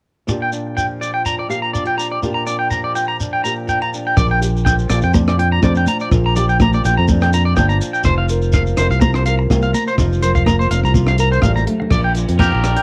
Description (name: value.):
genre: highlife guitar band.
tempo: 124 BPM.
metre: 4/4.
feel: swing 53% on 16ths.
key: Bb major.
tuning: A4 = 440 Hz.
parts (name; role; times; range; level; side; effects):
flamenco guitar; accompaniment; 0.3-12.8 s; Bb2 to Bb4; -26 LUFS; equal; none.
electric guitar at the edge of break-up; arpeggios; 0.3-12.8 s; C5 to Bb5; -22 LUFS; equal; plate reverb, analog delay.
shekere; percussion; 0.3-12.8 s; none; -29 LUFS; equal; none.
fingered electric bass; bass; 4.2-12.8 s; F1 to F2; -18 LUFS; equal; none.
compact cocktail drum kit; drums; 4.2-12.8 s; crash cymbal, hi-hat, kick drum, rim click; -21 LUFS; equal; cassette tape.
congas; percussion; 4.2-12.7 s; none; -24 LUFS; equal; none.
electric guitar at the edge of break-up; melody; 12.4-12.8 s; G4 to Bb4; -21 LUFS; equal; spring reverb, cassette tape.
room: light reverb.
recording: home recording on cassette.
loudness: -16 LUFS.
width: mono.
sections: 0.3-4.2 A section; 4.2-11.9 B section.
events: drum fill 11.5-11.9.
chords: 0.3 Bb6; 8.0 Fsus4; 11.9 Bb6.